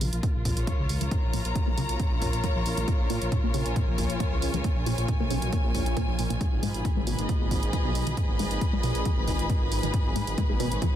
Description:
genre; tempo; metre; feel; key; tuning
driving peak-time techno; 136 BPM; 4/4; straight; Bb phrygian; A4 = 437 Hz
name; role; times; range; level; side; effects
tight sequenced synth; riff; 0.0-10.9 s; Ab2 to Bb3; -33 LUFS; equal; chorus, sidechain pumping, ping-pong delay
dark detuned saw bass; bass; 0.0-11.0 s; Ab1 to Bb2; -30 LUFS; equal; sidechain pumping
deep dark ambient pad; drone; 0.4-11.0 s; Bb2 to F3; -36 LUFS; equal; chorus, built-in reverb, sidechain pumping
electronic hi-hat; drums; 0.0-10.9 s; none; -37 LUFS; right 3 dB; none
rich studio string section; texture; 0.0-11.0 s; F4 to Cb6; -33 LUFS; left 1 dB; sidechain pumping
electronic kick drum; drums; 0.2-10.9 s; none; -27 LUFS; equal; none
room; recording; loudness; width
light reverb; dense, heavily limited modern master; -24 LUFS; side -11 dB against mid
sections
0.0-11.0 A section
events
filter sweep on synth arpeggio sound 0.0-11.0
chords
0.0 Bbm; 6.4 Abm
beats
0.23 0.67 | 1.11 1.55 2.00 2.44 | 2.88 3.32 3.76 4.20 | 4.64 5.08 5.53 5.97 | 6.41 6.85 7.29 7.73 | 8.17 8.61 9.05 9.50 | 9.94 10.38 10.82

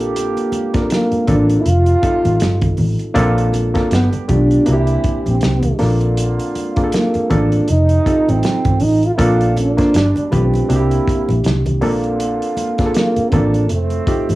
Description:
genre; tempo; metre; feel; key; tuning
lush 1970s-style soul; 80 BPM; 4/4; swing 58% on 16ths; unclear; A4 = 440 Hz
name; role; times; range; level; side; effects
barky reed electric piano; accompaniment; 0.0-14.4 s; G3 to C5; -19 LUFS; left 1 dB; overdrive, cassette tape, plate reverb
mellow trombone section; stabs; 0.0-14.4 s; A2 to G4; -26 LUFS; right 4 dB; cassette tape, plate reverb
vintage muted fingered electric bass; bass; 0.0-14.4 s; F1 to C2; -16 LUFS; equal; tube saturation
warm soul drum kit; drums; 0.0-14.4 s; hi-hat, kick drum, snare drum; -21 LUFS; equal; cassette tape
congas; percussion; 0.2-14.4 s; none; -26 LUFS; right 2 dB; none
mellow French horn; melody; 0.9-14.4 s; A3 to F4; -18 LUFS; right 1 dB; cassette tape
room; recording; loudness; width
moderate booth ambience, RT60 0.2 s; home recording on cassette; -13 LUFS; side -17 dB against mid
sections
0.0-14.4 A section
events
none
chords
0.0 Bbmaj7; 1.7 F7; 3.2 Bbmaj7; 3.9 G7; 4.7 C7; 5.8 Bbmaj7; 7.7 F7; 9.2 Bbmaj7; 9.9 G7; 10.7 C7; 11.8 Bbmaj7; 13.7 F7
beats
| 0.15 0.90 1.66 2.41 | 3.16 3.92 4.67 5.42 | 6.17 6.93 7.68 8.43 | 9.19 9.94 10.69 11.44 | 12.19 12.95 13.70

